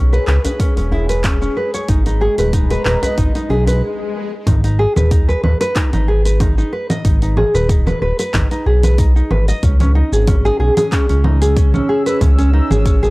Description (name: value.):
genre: organic downtempo.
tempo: 93 BPM.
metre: 4/4.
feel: swing 54% on 16ths.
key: unclear.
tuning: A4 = 440 Hz.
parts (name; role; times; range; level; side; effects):
warm analog pad; sustained chords; 0.0-3.8, 9.6-13.1 s; Ab3 to Fb6; -24 LUFS; equal; chorus, sidechain pumping.
nylon-string guitar; arpeggios; 0.0-13.1 s; C#4 to Eb5; -19 LUFS; equal; tape echo.
smooth synth bass; bass; 0.0-13.1 s; Eb1 to C#2; -15 LUFS; equal; sidechain pumping.
deep house drum kit; drums; 0.1-13.1 s; congas, handclaps, hi-hat, shaker; -22 LUFS; right 1 dB; none.
djembe; percussion; 0.4-3.8 s; none; -25 LUFS; left 1 dB; none.
electronic kick drum; drums; 0.6-13.0 s; none; -16 LUFS; equal; none.
swell; sound effects; 3.5-4.5 s; none; -27 LUFS; left 4 dB; none.
room: little or no reverb.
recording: dry, gritty hardware recording.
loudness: -12 LUFS.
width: side -22 dB against mid.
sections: 0.0-4.5 A section; 4.5-13.1 B section.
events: swell 3.5-4.5; stop 3.8-4.5.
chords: 0.0 E6; 1.9 Abmadd9; 4.5 Abm; 9.6 Dbmadd9.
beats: 0.60 1.24 | 1.89 2.53 3.18 3.82 | 4.47 5.11 5.76 6.40 | 7.05 7.69 8.34 8.98 | 9.63 10.28 10.92 11.56 | 12.21 12.86.